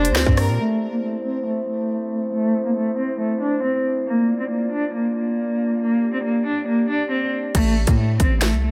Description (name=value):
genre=hip hop, drill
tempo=138 BPM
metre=4/4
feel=half-time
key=A phrygian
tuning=A4 = 440 Hz
part: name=clear cello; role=melody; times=0.0-8.7 s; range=A3 to D4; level=-24 LUFS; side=equal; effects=low-pass filter, delay
part: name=rich studio violin section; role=second line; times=0.0-0.6 s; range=Bb4 to C5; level=-33 LUFS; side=equal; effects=delay
part: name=glass harmonica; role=sustained chords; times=0.0-7.5 s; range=A3 to D5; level=-29 LUFS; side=equal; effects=low-pass filter
part: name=hard-hitting 808-style bass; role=bass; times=0.0-0.6, 7.5-8.7 s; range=F1 to Bb2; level=-22 LUFS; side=equal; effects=none
part: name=drill drum kit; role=drums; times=0.0-0.5, 7.5-8.5 s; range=crash cymbal, hi-hat, kick drum, rim click, snare drum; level=-22 LUFS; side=equal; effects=none
room=light reverb, studio ambience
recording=none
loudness=-21 LUFS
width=mono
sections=0.6-7.5 A section; 7.5-8.7 B section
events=filter sweep 0.6-7.5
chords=0.0 Gm; 0.6 Am; 4.1 Bb; 5.8 Gm; 7.5 Am